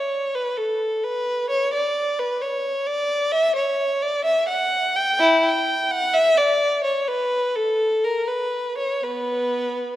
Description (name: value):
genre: classical, baroque-style suite movement for unaccompanied violin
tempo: 60-66 BPM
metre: 4/4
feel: rubato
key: D major, B minor from 5.2 s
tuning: A4 = 438 Hz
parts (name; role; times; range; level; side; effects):
- rich violin; solo; 0.0-10.0 s; B3 to G5; -19 LUFS; equal; none
room: moderate concert hall reverb, RT60 2.1 s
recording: none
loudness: -19 LUFS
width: side -13 dB against mid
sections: 0.0-10.0 A section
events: none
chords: none